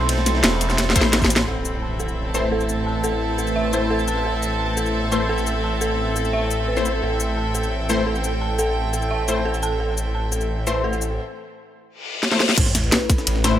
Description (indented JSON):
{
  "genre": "dark technical drum and bass",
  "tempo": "173 BPM",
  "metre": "4/4",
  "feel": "straight",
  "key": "A minor",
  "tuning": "A4 = 440 Hz",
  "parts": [
    { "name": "sweeping resonant pad", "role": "sustained chords", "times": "0.0-13.6 s", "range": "A3 to C5", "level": "-29 LUFS", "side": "right 2 dB", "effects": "chorus, sidechain pumping" },
    { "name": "snarling distorted saw bass", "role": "bass", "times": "0.0-13.6 s", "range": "E1 to B1", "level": "-24 LUFS", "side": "equal", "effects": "distortion, overdrive, sidechain pumping" },
    { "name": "rich chamber string section", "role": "texture", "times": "0.0-11.2 s", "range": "C4 to B5", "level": "-26 LUFS", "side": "equal", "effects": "sidechain pumping" },
    { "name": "breakbeat sampler-style drum kit", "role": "drums", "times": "0.1-1.5, 12.6-13.5 s", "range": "ride cymbal, snare drum", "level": "-29 LUFS", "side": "right 1 dB", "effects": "none" },
    { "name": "drum and bass drum kit", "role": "drums", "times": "0.1-13.5 s", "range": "cabasa, crash cymbal, hi-hat, ride cymbal, snare drum", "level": "-21 LUFS", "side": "equal", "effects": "overdrive" },
    { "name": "orchestra-hit-like synth stab", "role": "stabs", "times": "1.0-13.6 s", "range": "A3 to C5", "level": "-26 LUFS", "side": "left 3 dB", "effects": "built-in reverb, phaser, cassette tape, tape echo" },
    { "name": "electronic kick drum", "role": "drums", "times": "1.0-1.3, 12.6-13.2 s", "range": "none", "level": "-19 LUFS", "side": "equal", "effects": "overdrive" },
    { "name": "dark detuned synth bell", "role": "arpeggios", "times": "1.5-10.9 s", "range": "A4 to A5", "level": "-28 LUFS", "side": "right 1 dB", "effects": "chorus, sidechain pumping, low-pass filter, tape echo" },
    { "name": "impact, reverse cymbal and sub drop", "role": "sound effects", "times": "1.5-2.9, 12.0-13.6 s", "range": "none", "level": "-27 LUFS", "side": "left 2 dB", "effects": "none" }
  ],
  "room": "light reverb, digital ambience",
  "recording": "none",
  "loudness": "-19 LUFS",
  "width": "side -11 dB against mid",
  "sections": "0.0-1.5 A section; 1.5-12.6 B section; 12.6-13.6 A section",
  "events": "drop 0.0-1.5, 12.6-13.6; drum fill 0.8-1.5, 12.2-12.6; band accent 1.4; impact 1.5-2.9, 12.6-13.6; reverse cymbal 12.0-12.6",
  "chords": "0.0 Am"
}